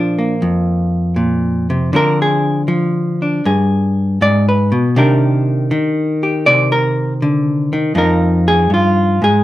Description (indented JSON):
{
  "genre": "solo jazz",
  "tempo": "80 BPM",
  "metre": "4/4",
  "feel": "swing 68% on 8ths",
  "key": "Bb major",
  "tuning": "A4 = 439 Hz",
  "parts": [
    { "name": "hollow-body jazz guitar", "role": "solo", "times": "0.0-9.4 s", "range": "F2 to D5", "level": "-12 LUFS", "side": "equal", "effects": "none" }
  ],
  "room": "moderate club reverb, RT60 0.5 s",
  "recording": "none",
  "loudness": "-12 LUFS",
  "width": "side -15 dB against mid",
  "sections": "0.0-9.4 A section",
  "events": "hollow-body jazz guitar solo 0.0-9.4",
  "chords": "0.0 Bb; 1.9 Dm7b5; 3.4 G; 4.9 Cm9; 8.0 Fm9",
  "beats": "0.41 1.16 | 1.92 2.67 3.42 4.18 | 4.93 5.69 6.44 7.20 | 7.95 8.71"
}